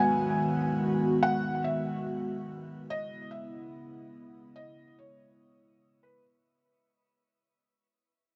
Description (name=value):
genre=hip hop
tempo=144 BPM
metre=4/4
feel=half-time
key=unclear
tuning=A4 = 440 Hz
part: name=felt-muted upright piano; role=melody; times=0.0-6.2 s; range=B4 to G#5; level=-33 LUFS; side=equal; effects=low-pass filter, tape echo
part: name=dark analog pad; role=sustained chords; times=0.0-6.2 s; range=C#3 to F#4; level=-33 LUFS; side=equal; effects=chorus
room=moderate shimmer reverb, RT60 7.7 s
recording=nothing above 7.8 kHz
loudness=-30 LUFS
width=mono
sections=0.0-6.2 A section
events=fade-out 0.0-6.2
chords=0.0 G#m7; 2.9 C#m7